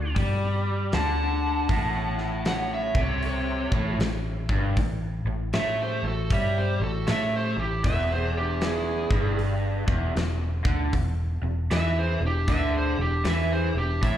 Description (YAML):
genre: blues rock power trio and southern rock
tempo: 78 BPM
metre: 4/4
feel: swing 64% on 8ths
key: unclear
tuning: A4 = 441 Hz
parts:
  - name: overdriven slide guitar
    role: melody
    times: 0.0-14.2 s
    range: G4 to A5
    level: -30 LUFS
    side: right 2 dB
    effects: slapback echo
  - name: dark smooth lead guitar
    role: second line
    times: 0.0-14.2 s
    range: D4 to F#5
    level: -39 LUFS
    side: right 2 dB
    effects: overdrive, slapback echo
  - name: raw garage guitar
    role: riff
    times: 0.0-14.2 s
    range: E2 to A3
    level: -30 LUFS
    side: left 1 dB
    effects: overdrive, spring reverb, slapback echo
  - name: vintage muted fingered electric bass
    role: bass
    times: 0.0-14.2 s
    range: E1 to A2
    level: -27 LUFS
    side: equal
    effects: none
  - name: big rock drum kit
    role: drums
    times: 0.2-14.2 s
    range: hi-hat, kick drum, snare drum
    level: -29 LUFS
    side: equal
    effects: none
room: studio reverb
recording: live gig heard through the venue's PA, club reverb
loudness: -23 LUFS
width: side -11 dB against mid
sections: 0.0-14.2 A section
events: none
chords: 0.0 D; 1.7 A7; 7.8 E7